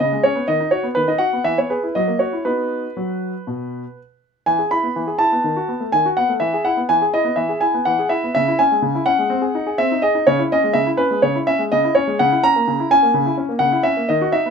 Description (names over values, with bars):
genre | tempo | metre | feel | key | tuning
classical-period piano sonatina | 124 BPM | 4/4 | straight | B major, E major from 4.5 s | A4 = 440 Hz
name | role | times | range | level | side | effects
warm grand piano | solo | 0.0-14.5 s | B2 to B5 | -16 LUFS | equal | none
room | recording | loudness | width
light reverb | minimal, uncompressed stereo recording | -16 LUFS | side -6 dB against mid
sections
0.0-4.5 A section; 4.5-14.5 B section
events
none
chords
0.5 B/D#; 1.5 E; 2.0 F#7; 2.5 B; 4.5 E; 5.4 B7/D#; 6.4 E; 8.4 C#m; 9.3 G#7/B#; 10.3 C#m; 12.2 C#m6